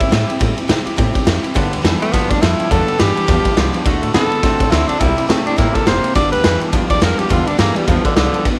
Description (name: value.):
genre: rockabilly.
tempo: 209 BPM.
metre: 4/4.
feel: swing 59% on 8ths.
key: G mixolydian.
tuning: A4 = 441 Hz.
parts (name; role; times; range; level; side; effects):
clear tenor saxophone; melody; 0.0-8.4 s; D3 to D5; -21 LUFS; equal; none.
picked steel-string acoustic guitar; accompaniment; 0.0-8.6 s; G2 to A4; -25 LUFS; equal; none.
upright bass; bass; 0.0-8.6 s; F1 to C3; -23 LUFS; equal; none.
raw garage drum kit; drums; 0.0-8.5 s; kick drum, ride cymbal, snare drum; -19 LUFS; equal; none.
electric guitar at the edge of break-up; riff; 1.6-8.4 s; G2 to C4; -24 LUFS; equal; none.
room: little or no reverb.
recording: none.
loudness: -15 LUFS.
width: mono.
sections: 0.0-8.5 A section.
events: tenor saxophone solo 0.0-8.5.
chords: 0.0 C; 1.6 G; 3.9 D; 5.0 C; 6.2 G.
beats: 0.12 | 0.41 0.69 0.98 1.27 | 1.56 1.85 2.13 2.42 | 2.71 3.00 3.28 3.57 | 3.86 4.15 4.43 4.72 | 5.01 5.29 5.58 5.87 | 6.16 6.44 6.73 7.02 | 7.30 7.59 7.88 8.17 | 8.45.